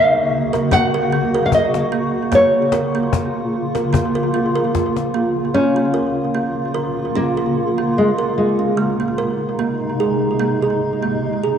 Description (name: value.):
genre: world meditative, meditative tuned percussion.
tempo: 74 BPM.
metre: 4/4.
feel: swing 55% on 16ths.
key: Bb minor.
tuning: A4 = 441 Hz.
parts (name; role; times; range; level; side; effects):
nylon-string guitar; melody; 0.0-9.5 s; Ab3 to Gb5; -18 LUFS; left 1 dB; cassette tape, analog delay.
granular cloud pad; sustained chords; 0.0-11.6 s; C3 to Gb4; -20 LUFS; equal; built-in reverb.
kalimba; arpeggios; 0.0-11.6 s; Gb3 to Bb4; -22 LUFS; right 5 dB; analog delay.
cajon; percussion; 0.5-5.3 s; none; -22 LUFS; left 5 dB; none.
room: wet spring reverb, RT60 2.2 s.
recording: home recording on cassette.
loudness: -16 LUFS.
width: side -8 dB against mid.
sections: 0.0-5.5 A section; 5.5-11.6 B section.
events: none.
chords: 0.0 Gb; 2.3 Bbm; 8.8 Ab.